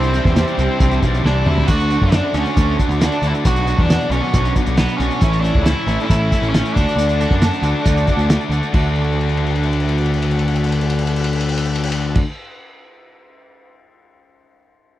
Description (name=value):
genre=indie rock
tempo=136 BPM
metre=4/4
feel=straight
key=D major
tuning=A4 = 438 Hz
part: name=overdriven electric guitar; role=melody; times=0.0-8.2 s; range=B3 to F#4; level=-22 LUFS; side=right 1 dB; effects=slapback echo
part: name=combo organ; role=sustained chords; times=0.0-12.2 s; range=A3 to D6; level=-32 LUFS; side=right 1 dB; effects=none
part: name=biting overdriven guitar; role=riff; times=0.0-12.3 s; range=A2 to A4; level=-24 LUFS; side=left 8 dB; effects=none
part: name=twangy electric guitar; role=riff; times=0.0-12.2 s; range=A2 to F#4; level=-26 LUFS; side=right 7 dB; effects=ensemble chorus, slapback echo
part: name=fuzz picked electric bass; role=bass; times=0.0-12.2 s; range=A1 to F#2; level=-18 LUFS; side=equal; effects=overdrive
part: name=cloth-damped thuddy drum kit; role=drums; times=0.0-13.7 s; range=crash cymbal, hi-hat, kick drum, ride cymbal, snare drum, toms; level=-19 LUFS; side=equal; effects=none
room=little or no reverb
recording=dry, close 1970s-style studio recording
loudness=-14 LUFS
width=side -14 dB against mid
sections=0.0-8.7 A section; 8.7-12.3 B section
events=drum fill 1.2-1.7, 9.0-12.2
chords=0.0 Cadd9; 1.7 D; 3.4 Bm; 5.2 A; 6.8 D